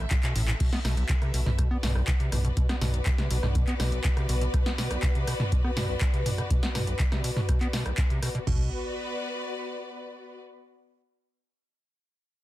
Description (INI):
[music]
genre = acid house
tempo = 122 BPM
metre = 4/4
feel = straight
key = B phrygian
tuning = A4 = 443 Hz
[part]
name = warm analog pad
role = sustained chords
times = 0.0-0.6 s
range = none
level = barely audible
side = none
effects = none
[part]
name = acid bass, square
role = riff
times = 0.0-8.7 s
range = B1 to B3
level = -32 LUFS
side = equal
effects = overdrive, sidechain pumping
[part]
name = round analog bass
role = bass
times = 0.0-4.5, 8.5-8.7 s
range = A1 to B1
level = -28 LUFS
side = equal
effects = sidechain pumping
[part]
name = rich symphonic string section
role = texture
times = 0.0-10.4 s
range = B3 to C6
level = -35 LUFS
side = left 2 dB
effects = sidechain pumping
[part]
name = electro analog drum machine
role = drums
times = 0.1-8.6 s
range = crash cymbal, kick drum, toms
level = -26 LUFS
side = equal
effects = none
[part]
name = punchy analog drum machine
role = drums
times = 0.1-8.4 s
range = crash cymbal, handclaps, hi-hat, rim click, snare drum, toms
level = -32 LUFS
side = equal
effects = none
[sound]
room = little or no reverb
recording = dense, heavily limited modern master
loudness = -24 LUFS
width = side -16 dB against mid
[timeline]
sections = 0.6-8.5 A section; 8.5-10.4 B section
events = drum fill 0.2-0.6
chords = 0.0 Am7; 0.6 Bm7; 8.5 Bm